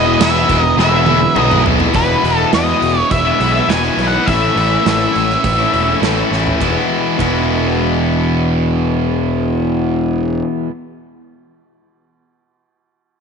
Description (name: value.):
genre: classic rock.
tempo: 103 BPM.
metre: 4/4.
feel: straight.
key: E major.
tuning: A4 = 440 Hz.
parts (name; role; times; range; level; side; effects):
octave-fuzz lead guitar; melody; 0.0-6.0 s; B4 to G#5; -17 LUFS; left 2 dB; distortion, slapback echo.
octave-fuzz lead guitar; second line; 0.0-1.6 s; B4; -23 LUFS; right 12 dB; distortion.
tonewheel organ; sustained chords; 0.0-1.9 s; E4 to C5; -28 LUFS; right 1 dB; none.
cranked stack guitar; riff; 0.0-10.7 s; E2 to E4; -19 LUFS; right 14 dB; overdrive.
overdriven semi-hollow guitar; riff; 0.0-10.7 s; E2 to E4; -18 LUFS; left 13 dB; none.
fuzz picked electric bass; bass; 0.0-10.4 s; E1 to E2; -18 LUFS; equal; overdrive.
big rock drum kit; drums; 0.2-7.4 s; crash cymbal, hi-hat, kick drum, ride cymbal, snare drum, toms; -21 LUFS; right 4 dB; none.
room: light reverb, studio reverb.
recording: 1960s-style stereo with parts hard left and right, nothing above 10.6 kHz.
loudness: -12 LUFS.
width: side -6 dB against mid.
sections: 0.0-1.9 A section; 1.9-6.6 B section; 6.6-8.9 C section.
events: drum fill 0.8-1.9, 6.3.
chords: 0.0 E; 4.3 A; 6.6 E.